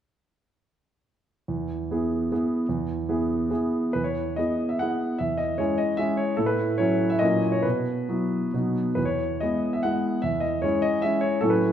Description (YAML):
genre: classical, romantic triple-time dance for piano with dotted rhythms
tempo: 127-161 BPM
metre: 3/4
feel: rubato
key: E major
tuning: A4 = 440 Hz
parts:
  - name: warm concert grand piano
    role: solo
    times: 1.5-11.7 s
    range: E2 to F#5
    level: -22 LUFS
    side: equal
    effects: none
room: wet recital hall reverb, RT60 1.5 s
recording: none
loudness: -23 LUFS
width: side -9 dB against mid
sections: 1.5-3.9 A section; 3.9-11.7 B section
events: none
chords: 1.5 E; 5.2 C#m/E; 6.4 F#m7/A; 7.2 F#7/A#; 7.6 Bsus4; 8.5 B; 9.0 E; 10.2 C#m/E